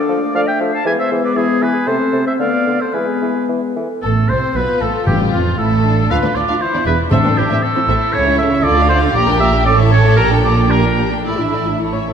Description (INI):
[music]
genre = quick classical-period movement for symphony orchestra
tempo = 105-120 BPM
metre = 2/4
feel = rubato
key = A minor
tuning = A4 = 442 Hz
[part]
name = silver concert flute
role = second line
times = 0.0-3.5 s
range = E4 to F5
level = -23 LUFS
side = left 2 dB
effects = none
[part]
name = warm oboe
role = second line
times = 0.0-11.8 s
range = E4 to A5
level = -18 LUFS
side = right 1 dB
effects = none
[part]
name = dark French horn section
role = sustained chords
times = 0.0-3.8 s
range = G#3 to D4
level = -19 LUFS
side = left 4 dB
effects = none
[part]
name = mellow clarinet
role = second line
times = 0.1-4.0 s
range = G#4 to B4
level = -26 LUFS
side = left 1 dB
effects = none
[part]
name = warm bassoon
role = accompaniment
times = 0.1-3.9 s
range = C3 to F3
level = -23 LUFS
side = equal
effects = none
[part]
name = muted chamber violin section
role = melody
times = 4.0-12.1 s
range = F4 to Bb5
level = -23 LUFS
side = left 5 dB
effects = none
[part]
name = muted chamber viola section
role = accompaniment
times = 4.0-12.1 s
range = F3 to C#5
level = -21 LUFS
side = equal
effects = none
[part]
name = muted studio double bass section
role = bass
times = 4.0-12.1 s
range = E1 to D2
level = -19 LUFS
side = right 3 dB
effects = none
[part]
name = muted symphonic cello section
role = bass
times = 4.0-12.1 s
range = D2 to D3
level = -19 LUFS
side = right 3 dB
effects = none
[part]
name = muted chamber violin section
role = second line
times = 4.6-12.1 s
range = C4 to A4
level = -21 LUFS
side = left 2 dB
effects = none
[part]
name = timpani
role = percussion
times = 5.1-7.8 s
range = A2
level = -21 LUFS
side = left 2 dB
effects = none
[sound]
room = wet concert hall reverb, RT60 2.4 s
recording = none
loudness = -13 LUFS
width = side -7 dB against mid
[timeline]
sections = 0.0-4.0 A section; 4.0-12.1 B section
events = none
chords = 0.0 Dm/F; 0.9 E; 1.9 Am/C; 2.4 Bm7b5/D; 2.9 E; 4.0 Am; 4.6 F; 5.1 Fmaj13; 6.1 Bdim/D; 6.6 E7(no3); 7.1 Am; 8.1 A/C#; 8.6 Dm; 9.1 Gm/Bb; 9.6 A; 10.2 Gm/Bb; 11.2 Asus4